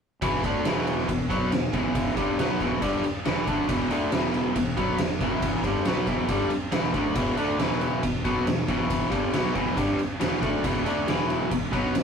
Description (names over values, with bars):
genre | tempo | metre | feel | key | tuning
blues rock power trio and southern rock | 138 BPM | 4/4 | straight | unclear | A4 = 441 Hz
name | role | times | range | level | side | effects
raw garage guitar | riff | 0.2-12.0 s | E2 to D4 | -25 LUFS | equal | overdrive
fuzz fingered electric bass | bass | 0.2-12.0 s | E1 to D2 | -34 LUFS | equal | overdrive
oversized low-tuned drum kit | drums | 0.2-12.0 s | kick drum, ride cymbal, snare drum | -27 LUFS | equal | none
room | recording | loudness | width
moderate studio ambience, RT60 0.5 s | rough rehearsal-room recording, warm saturation | -23 LUFS | side -6 dB against mid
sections
0.2-12.0 A section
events
none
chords
0.2 E5